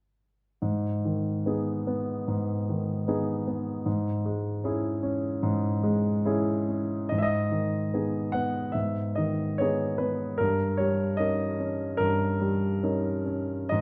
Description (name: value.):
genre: classical, romantic character piece for solo piano.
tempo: 73 BPM.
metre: 4/4.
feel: uneven beats, rubato.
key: G# minor.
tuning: A4 = 440 Hz.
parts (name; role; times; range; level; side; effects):
warm grand piano; solo; 0.6-13.8 s; G2 to F#5; -28 LUFS; equal; none.
room: moderate recital hall reverb, RT60 1.5 s.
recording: dark, warm production.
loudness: -28 LUFS.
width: mono.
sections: 0.6-7.1 A section; 7.1-13.8 B section.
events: none.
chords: 0.6 G#m; 3.9 C#m/G#; 7.1 G#m; 10.4 D#7/G.